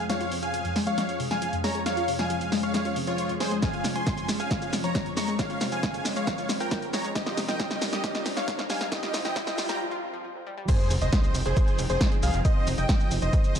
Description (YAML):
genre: uplifting trance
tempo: 136 BPM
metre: 4/4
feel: straight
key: F minor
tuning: A4 = 440 Hz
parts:
  - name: dense compressed supersaw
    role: melody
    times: 0.0-13.5 s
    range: F4 to Db6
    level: -32 LUFS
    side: equal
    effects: sidechain pumping, tape echo
  - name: plucky unison lead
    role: second line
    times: 0.0-13.5 s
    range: C5 to Db6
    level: -36 LUFS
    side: left 1 dB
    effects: lush chorus, sidechain pumping, tape echo
  - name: lush unison pad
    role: sustained chords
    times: 0.0-13.6 s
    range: F2 to G5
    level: -35 LUFS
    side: right 1 dB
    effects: chorus, sidechain pumping
  - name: analog pluck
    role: arpeggios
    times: 0.0-10.7 s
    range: F2 to F4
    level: -33 LUFS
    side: left 4 dB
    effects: chorus, sidechain pumping, tape echo
  - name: punchy analog drum machine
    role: drums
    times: 0.1-13.6 s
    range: crash cymbal, hi-hat, shaker, snare drum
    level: -31 LUFS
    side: equal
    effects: none
  - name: electronic kick drum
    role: drums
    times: 3.6-13.4 s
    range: none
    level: -26 LUFS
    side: equal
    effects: none
  - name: riser and sub drop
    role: sound effects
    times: 6.0-12.4 s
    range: none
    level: -37 LUFS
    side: equal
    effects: none
  - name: gritty driven synth bass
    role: bass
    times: 10.9-13.6 s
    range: F1 to C2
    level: -27 LUFS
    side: equal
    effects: sidechain pumping
room: moderate lush hall reverb, RT60 1.9 s, digital ambience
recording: dark, warm production, high-pass filter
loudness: -24 LUFS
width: side -8 dB against mid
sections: 0.0-10.7 A section; 10.7-13.6 B section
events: build-up 0.0-10.7; drum fill 0.0-9.8; filter sweep on synth pluck 0.0-10.7; break 9.8-10.7; drop 10.7-13.6; impact 10.7-12.4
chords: 0.1 Db/F; 7.2 Eb/F; 10.7 Fm7